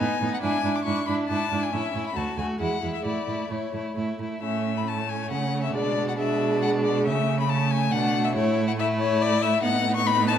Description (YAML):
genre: quick classical-period movement for string quartet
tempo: 138 BPM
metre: 3/4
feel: rubato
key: A major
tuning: A4 = 440 Hz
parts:
  - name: rich violin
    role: melody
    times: 0.0-10.4 s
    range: C#5 to D6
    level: -27 LUFS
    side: left 7 dB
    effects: none
  - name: rich violin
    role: second line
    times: 0.0-10.4 s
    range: C#4 to F#4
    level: -30 LUFS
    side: left 2 dB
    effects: none
  - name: clear viola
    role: accompaniment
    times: 0.0-10.4 s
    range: G#3 to D4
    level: -28 LUFS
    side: right 3 dB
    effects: none
  - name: rich cello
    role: bass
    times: 0.0-10.4 s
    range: D2 to C#3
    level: -29 LUFS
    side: right 4 dB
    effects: none
room: wet recital hall reverb, RT60 1.5 s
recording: none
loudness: -22 LUFS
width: side -9 dB against mid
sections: 0.0-4.4 A section; 4.4-10.4 B section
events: none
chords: 0.4 E7/G#; 1.7 A; 2.2 D; 2.6 E; 3.0 A; 5.7 E7/B; 7.1 A/C#; 8.4 A5; 9.6 B7/A